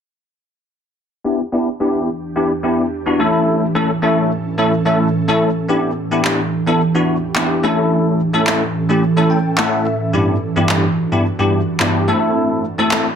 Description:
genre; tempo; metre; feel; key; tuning
dance-pop; 108 BPM; 4/4; straight; E minor; A4 = 442 Hz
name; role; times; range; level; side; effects
bell-like tine electric piano; accompaniment; 1.2-13.1 s; G2 to G5; -16 LUFS; left 1 dB; ensemble chorus, low-pass filter
ethereal airy pad; sustained chords; 2.0-13.2 s; E2 to A4; -20 LUFS; right 2 dB; ensemble chorus, built-in reverb, low-pass filter
electronic handclaps; drums; 6.2-13.0 s; none; -20 LUFS; equal; none
room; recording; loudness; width
light reverb; none; -14 LUFS; side -7 dB against mid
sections
1.2-5.7 A section; 5.7-13.2 B section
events
filter sweep 1.2-5.7; tine electric piano fill 9.0-10.1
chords
1.2 Em7; 3.2 A; 5.7 Em7; 7.6 A; 10.1 Em7/G; 12.1 Am

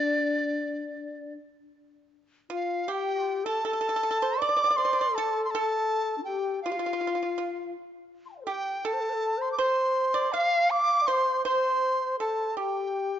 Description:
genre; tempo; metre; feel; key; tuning
chinese traditional, Chinese chamber ensemble; 80 BPM; 4/4; straight; D yu mode; A4 = 440 Hz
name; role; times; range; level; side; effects
large dizi; melody; 0.0-13.2 s; D5 to D6; -27 LUFS; right 1 dB; none
low xiao; second line; 0.0-13.2 s; D4 to C6; -30 LUFS; left 4 dB; none
pipa; second line; 0.0-13.2 s; D4 to F5; -32 LUFS; right 6 dB; none
room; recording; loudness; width
moderate concert hall reverb, RT60 2.0 s; dark, warm production, nothing above 7.6 kHz; -24 LUFS; side -10 dB against mid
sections
0.0-2.1 A section; 2.1-13.2 B section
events
none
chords
none

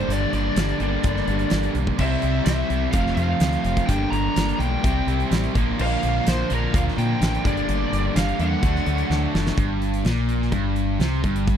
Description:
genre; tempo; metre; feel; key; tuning
classic rock; 127 BPM; 4/4; straight; G dorian; A4 = 440 Hz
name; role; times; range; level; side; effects
lead guitar through a small cranked amp; melody; 0.0-9.3 s; Bb4 to Bb5; -27 LUFS; equal; overdrive
distorted electric guitar; riff; 0.0-11.6 s; F2 to E4; -28 LUFS; right 13 dB; distortion
distorted electric guitar; riff; 0.0-11.6 s; F2 to D4; -29 LUFS; left 1 dB; overdrive
sludgy distorted guitar; riff; 0.0-11.6 s; F2 to E4; -28 LUFS; left 13 dB; overdrive
deep dub fingered electric bass; bass; 0.1-11.6 s; F1 to Bb2; -24 LUFS; equal; none
huge arena drum kit; drums; 0.1-11.6 s; crash cymbal, hi-hat, kick drum, snare drum; -25 LUFS; equal; none
room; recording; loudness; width
little or no reverb; dry, close 1970s-style studio recording; -19 LUFS; side -9 dB against mid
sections
0.0-9.6 A section; 9.6-11.6 B section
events
drum fill 9.1-9.6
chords
0.0 Gm; 2.0 C; 2.9 F; 3.9 Gm; 4.8 C; 5.5 Bb6; 7.4 Gm; 8.6 D; 9.6 Gm

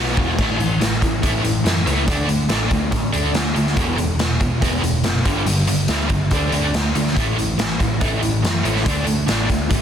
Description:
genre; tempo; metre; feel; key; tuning
hard rock; 142 BPM; 4/4; straight; unclear; A4 = 438 Hz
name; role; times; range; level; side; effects
overdriven electric guitar; riff; 0.0-9.8 s; E2 to D4; -21 LUFS; equal; harmonic tremolo
hollow-body short-scale picked electric bass; bass; 0.0-9.8 s; E1 to F#2; -23 LUFS; equal; none
raw garage drum kit; drums; 0.2-9.8 s; crash cymbal, hi-hat, kick drum, snare drum; -20 LUFS; equal; none
room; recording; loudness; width
small room ambience; dense, heavily limited modern master; -16 LUFS; side -8 dB against mid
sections
0.4-9.8 A section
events
none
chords
0.4 A5; 2.1 D5; 3.8 E5; 5.3 G5; 6.3 D5; 7.2 A5; 8.9 D5

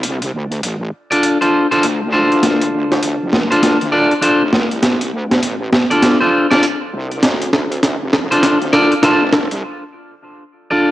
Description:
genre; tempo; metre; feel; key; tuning
glitch hop; 100 BPM; 4/4; swing 62% on 16ths; D minor; A4 = 439 Hz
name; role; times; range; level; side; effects
wobble bass; bass; 0.0-9.6 s; F1 to D2; -22 LUFS; equal; chorus, overdrive, high-pass filter
boom bap sampler-style drum kit; drums; 0.0-9.6 s; hi-hat, snare drum; -16 LUFS; equal; overdrive, cassette tape
clean electric guitar; stabs; 1.1-10.9 s; D4 to D5; -14 LUFS; equal; cassette tape, analog delay
room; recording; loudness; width
wet digital room reverb, RT60 1.2 s; home recording on cassette; -12 LUFS; side -14 dB against mid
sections
0.0-10.9 A section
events
build-up 0.0-10.9; drum fill 2.4-9.6; break 9.6-10.9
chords
0.0 Dm7

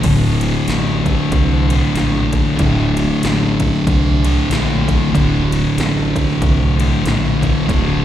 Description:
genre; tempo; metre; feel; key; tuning
stoner and doom metal; 94 BPM; 4/4; swing 59% on 8ths; unclear; A4 = 438 Hz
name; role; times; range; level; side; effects
thick fuzz guitar; riff; 0.0-8.0 s; D2 to D3; -18 LUFS; left 6 dB; distortion, slapback echo
thick fuzz guitar; riff; 0.0-8.0 s; D2 to D3; -18 LUFS; right 6 dB; distortion
growling fingered electric bass; bass; 0.0-8.0 s; D1 to C2; -19 LUFS; equal; overdrive, tube saturation
80s electronic pad drums; drums; 0.0-7.9 s; crash cymbal, kick drum, ride cymbal, snare drum; -21 LUFS; equal; none
room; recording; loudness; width
little or no reverb; live gig heard through the venue's PA, recital hall reverb; -13 LUFS; side -11 dB against mid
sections
0.0-8.0 A section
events
none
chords
0.0 D5

